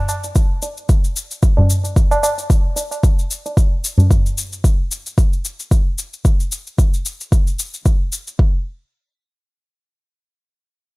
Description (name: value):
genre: downtempo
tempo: 112 BPM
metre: 4/4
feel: swing 56% on 16ths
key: none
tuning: none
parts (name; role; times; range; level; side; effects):
- cabasa; drums; 0.1-8.4 s; none; -25 LUFS; left 3 dB; overdrive
- tabla; percussion; 0.1-4.1 s; none; -18 LUFS; equal; none
- electronic kick drum; drums; 0.4-8.5 s; none; -14 LUFS; equal; overdrive
room: little or no reverb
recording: dry, gritty hardware recording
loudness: -15 LUFS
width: side -24 dB against mid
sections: 0.0-8.4 A section; 8.4-11.0 B section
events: none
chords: none